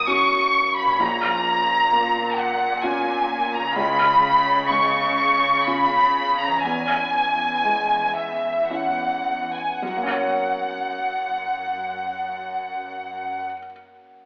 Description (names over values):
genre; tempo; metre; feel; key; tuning
cinematic, emotional film score for orchestra; 52-66 BPM; 3/4; rubato; F# major; A4 = 445 Hz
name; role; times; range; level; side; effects
warm symphonic violin section; melody; 0.0-13.4 s; E5 to C#6; -22 LUFS; equal; none
felt-muted upright piano; accompaniment; 0.0-14.3 s; A#1 to C#5; -32 LUFS; equal; none
concert harp; arpeggios; 0.0-13.7 s; F#2 to C#5; -39 LUFS; equal; none
rich symphonic cello section; bass; 0.0-13.4 s; E2 to C#3; -33 LUFS; equal; none
room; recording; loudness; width
wet recital hall reverb, RT60 1.8 s; recorded in a church or concert hall, telephone sound; -21 LUFS; mono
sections
0.0-9.8 A section; 9.8-13.1 B section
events
slowing down 2.4-9.8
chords
0.0 F#; 1.0 A#m; 3.8 C#; 6.6 E6; 9.8 F#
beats
0.07 | 1.00 1.92 2.84 | 3.76 4.70 5.66 | 6.64 7.64 8.70 | 9.82 10.92 12.03